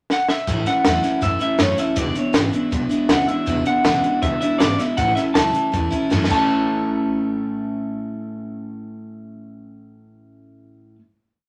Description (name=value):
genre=rockabilly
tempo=159 BPM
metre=4/4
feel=straight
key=A major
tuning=A4 = 440 Hz
part: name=electric guitar through a small old amp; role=melody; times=0.1-11.0 s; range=B4 to A5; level=-24 LUFS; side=equal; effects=none
part: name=compact cocktail drum kit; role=drums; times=0.1-6.4 s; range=crash cymbal, hi-hat, kick drum, snare drum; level=-24 LUFS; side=equal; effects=none
part: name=picked steel-string acoustic guitar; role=accompaniment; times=0.5-11.0 s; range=E2 to E4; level=-27 LUFS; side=equal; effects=none
part: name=electric guitar through a small old amp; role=riff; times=0.5-11.0 s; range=E2 to C#5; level=-28 LUFS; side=equal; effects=none
part: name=upright bass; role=bass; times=0.5-10.9 s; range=E1 to F#2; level=-30 LUFS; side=equal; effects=none
room=moderate studio reverb, RT60 0.6 s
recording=none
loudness=-20 LUFS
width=mono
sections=0.0-0.5 pickup bar; 0.5-6.5 A section; 6.5-9.5 final hit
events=drum fill 0.1-0.5, 6.1-6.5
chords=0.5 A; 2.0 E7; 5.0 A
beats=0.10 | 0.47 0.85 1.22 1.59 | 1.97 2.34 2.72 3.10 | 3.47 3.85 4.23 4.60 | 4.98 5.36 5.74 6.12 | 6.50 6.88 7.26 7.64 | 8.02 8.40 8.78 9.16